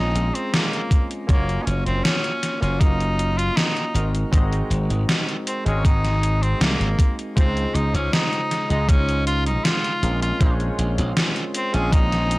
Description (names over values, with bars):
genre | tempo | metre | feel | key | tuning
vaporwave | 79 BPM | 4/4 | straight | Db major | A4 = 440 Hz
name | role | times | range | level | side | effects
clear tenor saxophone | melody | 0.0-12.4 s | Bb3 to F4 | -26 LUFS | equal | tape echo
barky tine electric piano | accompaniment | 0.0-12.4 s | Db3 to F5 | -28 LUFS | equal | medium stereo tremolo, analog chorus
slap bass | bass | 0.0-12.4 s | Gb1 to Db2 | -22 LUFS | equal | none
gated 80s digital drum machine | drums | 0.2-12.4 s | hi-hat, snare drum | -24 LUFS | equal | gated reverb, gated reverb snare, overdrive, vintage 12-bit sampler grit
electronic kick drum | drums | 0.9-12.1 s | none | -17 LUFS | equal | overdrive, vintage 12-bit sampler grit
room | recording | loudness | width
digital ambience | dry, gritty hardware recording, transformer saturation | -18 LUFS | side -21 dB against mid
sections
0.0-12.4 A section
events
none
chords
0.0 Bbm9; 1.3 Gbmaj7; 4.0 Ab9; 7.4 Dbmaj9; 10.0 Bbm9